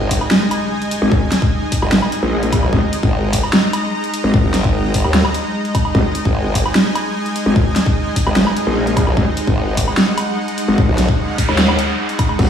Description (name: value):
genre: heavy wobble dubstep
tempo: 149 BPM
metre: 4/4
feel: half-time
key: unclear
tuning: A4 = 436 Hz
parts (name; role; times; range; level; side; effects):
- supersaw pad; sustained chords; 0.0-12.5 s; G#3 to A#5; -20 LUFS; equal; sidechain pumping
- formant-sweep wobble bass; bass; 0.0-11.1 s; G#1 to D#2; -18 LUFS; equal; chorus, overdrive
- impact and noise sweep; sound effects; 0.0-1.1, 11.1-12.4 s; none; -26 LUFS; right 1 dB; none
- dubstep drum kit; drums; 0.1-12.5 s; crash cymbal, hi-hat, snare drum, woodblock; -18 LUFS; equal; studio reverb
- electronic kick drum; drums; 0.1-12.5 s; none; -17 LUFS; left 1 dB; studio reverb
- growl bass; bass; 1.0-12.5 s; G#1 to D#2; -16 LUFS; left 1 dB; chorus, overdrive
room: light reverb, digital ambience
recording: played on a big sound system in a bare room, stone room reverb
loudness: -14 LUFS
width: side -8 dB against mid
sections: 0.0-12.5 A section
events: impact 0.0-1.1; noise sweep 11.1-12.4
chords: 0.0 G#5